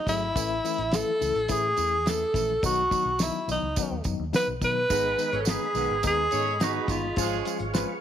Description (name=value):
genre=uptempo 1960s-style soul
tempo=106 BPM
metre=4/4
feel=straight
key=unclear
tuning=A4 = 440 Hz
part: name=breathy tenor saxophone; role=melody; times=0.0-7.5 s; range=D#4 to B4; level=-26 LUFS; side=equal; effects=none
part: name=dark horn section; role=second line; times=0.0, 4.9-8.0 s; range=D#3 to C#5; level=-32 LUFS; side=right 12 dB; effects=none
part: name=tine electric piano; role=accompaniment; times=0.1-7.9 s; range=D#3 to G#4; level=-33 LUFS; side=left 11 dB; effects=overdrive, medium stereo tremolo
part: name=vintage muted fingered electric bass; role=bass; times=0.1-7.8 s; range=G1 to B2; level=-34 LUFS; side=equal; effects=none
part: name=cloth-damped thuddy drum kit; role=drums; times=0.1-7.9 s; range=hi-hat, kick drum, snare drum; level=-30 LUFS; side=equal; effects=none
part: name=tambourine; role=percussion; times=0.1-7.9 s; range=none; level=-37 LUFS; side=right 13 dB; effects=none
part: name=mellow tonewheel organ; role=sustained chords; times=4.9-8.0 s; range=G#4 to C#6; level=-37 LUFS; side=right 1 dB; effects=fast rotary speaker, chorus vibrato
room=moderate plate reverb, RT60 1.6 s, studio reverb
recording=1960s-style stereo with parts hard left and right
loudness=-24 LUFS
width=side -9 dB against mid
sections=0.0-8.0 A section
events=none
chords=0.4 A; 2.6 B; 4.9 G#m; 7.2 C#/G#